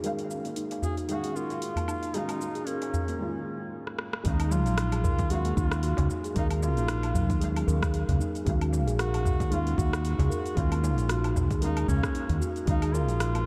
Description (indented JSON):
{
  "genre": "organic downtempo",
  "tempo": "114 BPM",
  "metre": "4/4",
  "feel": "swing 56% on 16ths",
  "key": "Eb minor",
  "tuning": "A4 = 435 Hz",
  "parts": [
    { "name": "felt-muted upright piano", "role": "accompaniment", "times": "0.0-13.5 s", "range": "Eb3 to F5", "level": "-38 LUFS", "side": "equal", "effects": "ensemble chorus, sidechain pumping, diffuse ambient delay" },
    { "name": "steel tongue drum", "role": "arpeggios", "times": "0.0-13.4 s", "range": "Gb3 to Bb4", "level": "-36 LUFS", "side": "equal", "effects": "diffuse ambient delay" },
    { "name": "deep house drum kit", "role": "drums", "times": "0.0-13.4 s", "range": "hi-hat, rim click, shaker, woodblock", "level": "-40 LUFS", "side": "equal", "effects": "studio reverb" },
    { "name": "darbuka", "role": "percussion", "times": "0.2-13.4 s", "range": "none", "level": "-36 LUFS", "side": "equal", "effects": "none" },
    { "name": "warm duduk", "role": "melody", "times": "0.8-13.5 s", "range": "Db4 to Ab4", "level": "-37 LUFS", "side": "equal", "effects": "diffuse ambient delay" },
    { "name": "mellow fretless electric bass", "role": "bass", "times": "4.3-13.5 s", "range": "Bb1 to Eb2", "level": "-30 LUFS", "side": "equal", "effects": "analog chorus, sidechain pumping" },
    { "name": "electronic kick drum", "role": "drums", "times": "4.3-12.8 s", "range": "none", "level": "-32 LUFS", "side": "equal", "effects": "studio reverb" }
  ],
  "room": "moderate lush hall reverb, RT60 2.9 s",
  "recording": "dreamy mix soaked in reverb",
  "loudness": "-28 LUFS",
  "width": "mono",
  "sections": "0.0-4.3 A section; 4.3-13.5 B section",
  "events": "filter sweep on felt piano 0.0-4.3; break 3.2-4.3; drum fill 3.9-4.3",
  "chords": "0.0 Ebm7"
}